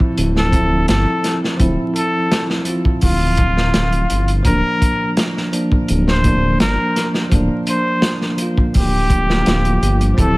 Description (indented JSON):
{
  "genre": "trip hop",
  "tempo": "84 BPM",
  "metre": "4/4",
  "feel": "straight",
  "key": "unclear",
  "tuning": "A4 = 440 Hz",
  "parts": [
    { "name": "bell-like tine electric piano", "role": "accompaniment", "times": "0.0-10.4 s", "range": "F3 to F4", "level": "-20 LUFS", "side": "equal", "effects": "harmonic tremolo, tape echo" },
    { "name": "crunchy breakbeat drum kit", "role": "drums", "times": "0.0-10.4 s", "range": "hi-hat, kick drum, snare drum", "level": "-18 LUFS", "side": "equal", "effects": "none" },
    { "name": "dark detuned saw bass", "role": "bass", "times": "0.2-10.3 s", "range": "D1 to G1", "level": "-18 LUFS", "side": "equal", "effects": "tube saturation" },
    { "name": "trumpet with straight mute", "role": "melody", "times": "0.4-10.4 s", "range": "F4 to C5", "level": "-21 LUFS", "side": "left 1 dB", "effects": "tape echo" },
    { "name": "warbly tape-like pad", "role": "sustained chords", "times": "10.3-10.4 s", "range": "G3 to G4", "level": "-31 LUFS", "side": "right 2 dB", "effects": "none" }
  ],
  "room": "small room ambience",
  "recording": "vinyl crackle",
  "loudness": "-14 LUFS",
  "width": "side -22 dB against mid",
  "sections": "0.0-10.4 A section",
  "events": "none",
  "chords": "0.0 Dm9; 4.5 Bb/D",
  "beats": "0.17 0.89 | 1.60 2.32 3.03 3.75 | 4.46 5.17 5.89 6.60 | 7.32 8.03 8.74 9.46 | 10.17"
}